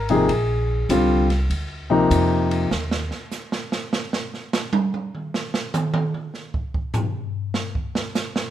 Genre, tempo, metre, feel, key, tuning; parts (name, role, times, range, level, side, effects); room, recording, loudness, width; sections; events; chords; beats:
jazz piano trio; 99 BPM; 4/4; swing 66% on 8ths; Bb mixolydian; A4 = 440 Hz
warm concert grand piano; melody; 0.0-2.7 s; C3 to Ab4; -19 LUFS; left 2 dB
upright bass; bass; 0.0-3.1 s; Ab1 to F2; -23 LUFS; right 1 dB
open jazz drum kit; drums; 0.1-8.5 s; hi-hat, kick drum, ride cymbal, snare drum, toms; -25 LUFS; right 2 dB
light reverb; minimal, uncompressed stereo recording; -20 LUFS; side -11 dB against mid
0.0-8.5 A section
grand piano solo 0.0-8.5; drum solo 2.7-8.5
0.0 Bb9; 2.7 N.C.
| 0.30 0.90 1.51 2.11 | 2.72 3.32 3.93 4.53 | 5.14 5.74 6.35 6.95 | 7.56 8.16